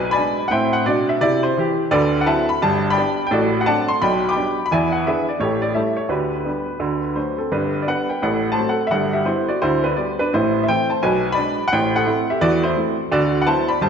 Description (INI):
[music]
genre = jazz, stride piano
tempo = 171 BPM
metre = 4/4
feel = swing 63% on 8ths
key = G major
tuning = A4 = 440 Hz
[part]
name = clear upright piano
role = solo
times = 0.0-13.9 s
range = G1 to D6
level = -17 LUFS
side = equal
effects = none
[sound]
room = wet concert hall reverb, RT60 2.2 s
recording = recorded in a church or concert hall, nothing above 8.0 kHz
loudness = -17 LUFS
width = side -7 dB against mid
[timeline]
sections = 0.0-7.5 A section; 7.5-13.9 A section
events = none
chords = 0.0 G#dim/B; 0.5 Am7; 1.9 D13; 2.6 G; 3.3 D7/A; 4.0 G/B; 4.7 E7; 5.4 A7; 6.1 G/D; 6.8 D; 7.5 G; 8.2 F#dim/A; 8.9 G; 10.3 Am; 11.0 G#dim/B; 11.7 Am7; 13.1 D13